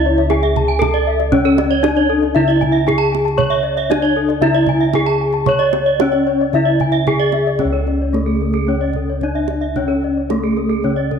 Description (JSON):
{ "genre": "Balinese gamelan", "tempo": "114 BPM", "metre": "4/4", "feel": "straight", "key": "C# pelog", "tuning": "A4 = 440 Hz", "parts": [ { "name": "gamelan-type bronze metallophone", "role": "melody", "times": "0.0-11.2 s", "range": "A3 to C#5", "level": "-17 LUFS", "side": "equal", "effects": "none" }, { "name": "gamelan-type bronze metallophone", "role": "arpeggios", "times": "0.0-11.1 s", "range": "G#4 to A5", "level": "-23 LUFS", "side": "right 9 dB", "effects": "none" }, { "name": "gamelan-type bossed gongs", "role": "bass", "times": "0.0-11.2 s", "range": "C#2 to C#5", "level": "-20 LUFS", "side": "equal", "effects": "none" }, { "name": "gamelan-type bronze metallophone", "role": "arpeggios", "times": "0.1-11.2 s", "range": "A4 to C#6", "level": "-21 LUFS", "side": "left 9 dB", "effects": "none" }, { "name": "kendang", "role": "percussion", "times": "0.2-11.2 s", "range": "none", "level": "-24 LUFS", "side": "right 11 dB", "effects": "none" } ], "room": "moderate echo chamber reverb, RT60 1.7 s, small room ambience", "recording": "1960s-style stereo with parts hard left and right", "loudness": "-14 LUFS", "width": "side -7 dB against mid", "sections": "0.0-7.6 A section; 7.6-11.2 B section", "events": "none", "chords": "none" }